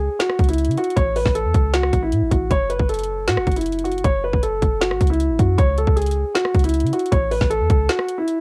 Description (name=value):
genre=hip hop, trap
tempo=156 BPM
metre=4/4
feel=half-time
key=F# minor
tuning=A4 = 435 Hz
part: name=dark baby grand piano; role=melody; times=0.0-8.4 s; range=E4 to C#5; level=-23 LUFS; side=equal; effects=low-pass filter, cassette tape
part: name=clean 808-style bass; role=bass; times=0.0-7.9 s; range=F#1 to C#3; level=-23 LUFS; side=equal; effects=none
part: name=trap drum kit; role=drums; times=0.2-8.4 s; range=hi-hat, kick drum, rim click, snare drum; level=-23 LUFS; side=equal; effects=none
room=light reverb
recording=home recording on cassette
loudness=-19 LUFS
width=mono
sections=0.0-8.4 A section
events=break 7.9-8.4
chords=0.0 C#5; 1.0 A; 2.5 F#m; 5.6 C#5; 7.1 A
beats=0.20 0.58 | 0.97 1.35 1.74 2.12 | 2.51 2.89 3.27 3.66 | 4.04 4.43 4.81 5.20 | 5.58 5.97 6.35 6.74 | 7.12 7.51 7.89 8.28